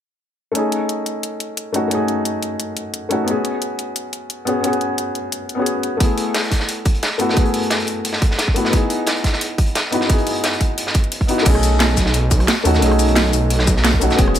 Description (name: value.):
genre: liquid drum and bass.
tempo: 176 BPM.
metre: 4/4.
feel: straight.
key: unclear.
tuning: A4 = 440 Hz.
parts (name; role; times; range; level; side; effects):
felt-muted upright piano; accompaniment; 0.5-14.4 s; A3 to G#4; -20 LUFS; left 1 dB; low-pass filter, ping-pong delay.
drum and bass drum kit; drums; 0.6-14.4 s; crash cymbal, hi-hat, rim click, shaker, snare drum; -22 LUFS; left 1 dB; overdrive, small room ambience.
crunchy breakbeat drum kit; drums; 6.0-14.4 s; hi-hat, snare drum; -22 LUFS; equal; high-pass filter on hats, small room ambience, high-pass filter on snare, high-pass filter on room.
electronic kick drum; drums; 6.0-14.3 s; none; -17 LUFS; right 1 dB; overdrive, small room ambience.
swelling detuned saw bass; bass; 11.5-14.4 s; E1 to D#2; -17 LUFS; right 1 dB; none.
room: light reverb.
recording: none.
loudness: -16 LUFS.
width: side -10 dB against mid.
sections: 0.6-11.5 A section; 11.5-14.4 B section.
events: drop 11.5-14.4.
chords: 0.6 Amaj7#11; 3.3 F#sus24/B; 6.0 F#m11; 8.7 Emaj9/B; 11.5 B13.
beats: | 0.55 0.89 1.23 1.57 | 1.91 2.25 2.60 2.94 | 3.28 3.62 3.96 4.30 | 4.64 4.98 5.32 5.66 | 6.00 6.34 6.69 7.03 | 7.37 7.71 8.05 8.39 | 8.73 9.07 9.41 9.75 | 10.10 10.44 10.78 11.12 | 11.46 11.80 12.14 12.48 | 12.82 13.16 13.50 13.85 | 14.19.